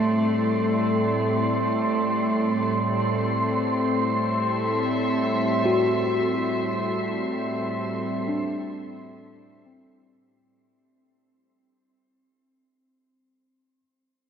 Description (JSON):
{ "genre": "ambient", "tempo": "free time", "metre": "none", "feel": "none", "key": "A dorian", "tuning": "A4 = 440 Hz", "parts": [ { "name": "evolving wavetable pad", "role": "sustained chords", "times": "0.0-10.4 s", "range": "A2 to E5", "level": "-25 LUFS", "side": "equal", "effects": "chorus, built-in reverb, shimmer reverb" }, { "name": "bowed-like drone", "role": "drone", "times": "0.0-10.5 s", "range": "A3", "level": "-27 LUFS", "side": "equal", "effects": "built-in reverb" }, { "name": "wind-like tuned noise texture", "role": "texture", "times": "0.0-10.4 s", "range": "C6", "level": "-29 LUFS", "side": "right 1 dB", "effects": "built-in reverb, shimmer reverb" }, { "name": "tine electric piano", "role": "arpeggios", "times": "5.7-13.8 s", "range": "C4 to F#4", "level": "-27 LUFS", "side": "left 2 dB", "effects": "medium stereo tremolo, ping-pong delay, shimmer reverb" } ], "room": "wet huge ambient reverb, RT60 8.4 s", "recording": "worn, warbling old tape, cassette tape, warbly pitch drift", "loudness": "-22 LUFS", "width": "side -8 dB against mid", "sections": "0.0-10.4 A section", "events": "fade-in on ambient pad 0.0-10.4; fade-in on synth texture 0.0-10.4; fade-out on synth drone 0.0-10.4; fade-out 5.4-10.4", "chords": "0.0 Am7" }